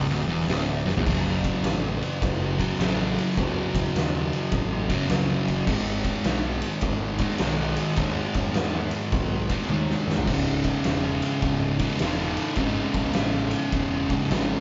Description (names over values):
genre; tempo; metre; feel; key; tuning
stoner and doom metal; 104 BPM; 4/4; swing 65% on 8ths; unclear; A4 = 439 Hz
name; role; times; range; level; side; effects
fuzz guitar; riff; 0.0-14.6 s; C#2 to G#3; -28 LUFS; equal; distortion
fuzz picked electric bass; bass; 0.0-14.5 s; C#1 to F#2; -33 LUFS; equal; overdrive
oversized low-tuned drum kit; drums; 0.4-14.5 s; crash cymbal, hi-hat, kick drum, ride cymbal, snare drum, toms; -30 LUFS; equal; none
room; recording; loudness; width
light reverb; band playing live in one room, nothing above 7.5 kHz; -25 LUFS; mono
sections
0.0-1.1 A section; 1.1-14.6 B section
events
drum fill 0.8, 9.7-10.3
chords
0.0 C#m; 1.1 F#m; 5.7 G#m; 10.3 C#m